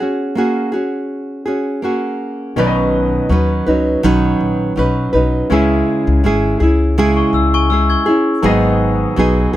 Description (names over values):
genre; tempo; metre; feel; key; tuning
pop; 82 BPM; 4/4; swing 55% on 16ths; B major; A4 = 440 Hz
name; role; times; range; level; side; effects
nylon-string guitar; accompaniment; 0.0-9.6 s; G#2 to B4; -15 LUFS; right 1 dB; none
clear concert grand piano; accompaniment; 2.6-9.6 s; A#3 to E5; -24 LUFS; left 6 dB; none
upright bass; bass; 2.6-9.6 s; G#1 to D#2; -17 LUFS; left 1 dB; none
glockenspiel with soft plastic mallets; second line; 7.2-8.4 s; G#5 to G#6; -19 LUFS; left 4 dB; none
room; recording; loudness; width
little or no reverb; none; -13 LUFS; side -14 dB against mid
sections
0.0-2.6 A section; 2.6-9.6 B section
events
none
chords
0.0 F#add9; 2.6 Badd9; 5.5 C#m; 8.4 G#m7